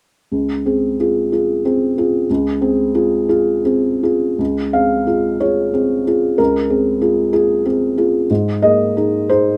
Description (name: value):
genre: neoclassical minimalist piano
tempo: 52-64 BPM (dotted quarters)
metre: 6/8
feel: rubato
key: unclear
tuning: A4 = 440 Hz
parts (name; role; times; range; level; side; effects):
- felt-muted upright piano; solo; 0.3-9.6 s; Db2 to F5; -16 LUFS; equal; none
room: light reverb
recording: none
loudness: -16 LUFS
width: mono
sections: 0.3-4.4 A section; 4.4-9.6 B section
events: none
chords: 0.3 Dbmaj7; 8.3 Abadd9